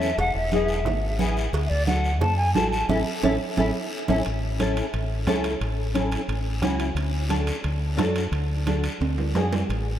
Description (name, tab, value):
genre	latin, cumbia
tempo	177 BPM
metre	4/4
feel	straight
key	A major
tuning	A4 = 436 Hz
part	concert flute	melody	0.0-4.2 s	D5 to A5	-28 LUFS	equal	none
part	flamenco guitar	accompaniment	0.0-9.6 s	B3 to A4	-28 LUFS	left 2 dB	ensemble chorus
part	deep dub fingered electric bass	bass	0.0-10.0 s	E1 to F#2	-26 LUFS	equal	none
part	guiro	percussion	0.0-10.0 s	none	-36 LUFS	left 2 dB	none
part	congas	percussion	0.2-9.9 s	none	-30 LUFS	right 5 dB	none
part	cowbell and timbales	percussion	0.2-9.9 s	none	-33 LUFS	right 5 dB	none
room	moderate huge ambient reverb, RT60 4.7 s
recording	dreamy mix soaked in reverb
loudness	-22 LUFS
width	side -11 dB against mid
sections	0.0-4.3 A section; 4.3-10.0 B section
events	band accent 2.9-4.3; drum fill 3.7-4.3, 9.0-9.7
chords	0.2 E; 1.5 D; 2.9 A; 7.0 D